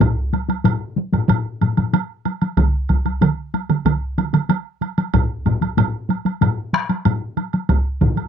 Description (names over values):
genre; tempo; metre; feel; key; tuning
japanese traditional, taiko drum ensemble; 94 BPM; 4/4; straight; none; none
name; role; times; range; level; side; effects
taiko ensemble; percussion; 0.0-8.3 s; none; -19 LUFS; left 1 dB; none
taiko ensemble; percussion; 0.0-8.2 s; none; -20 LUFS; left 3 dB; none
taiko ensemble; percussion; 0.0-8.2 s; none; -21 LUFS; right 1 dB; none
woodblock; percussion; 0.0-8.3 s; none; -28 LUFS; right 22 dB; none
taiko ensemble; percussion; 2.6-8.2 s; none; -20 LUFS; right 5 dB; none
room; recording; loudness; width
light reverb; dry, close 1970s-style studio recording; -17 LUFS; side -8 dB against mid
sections
0.0-8.3 A section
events
none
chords
none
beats
| 0.01 0.66 1.30 1.94 | 2.58 3.22 3.86 4.50 | 5.14 5.78 6.42 7.06 | 7.70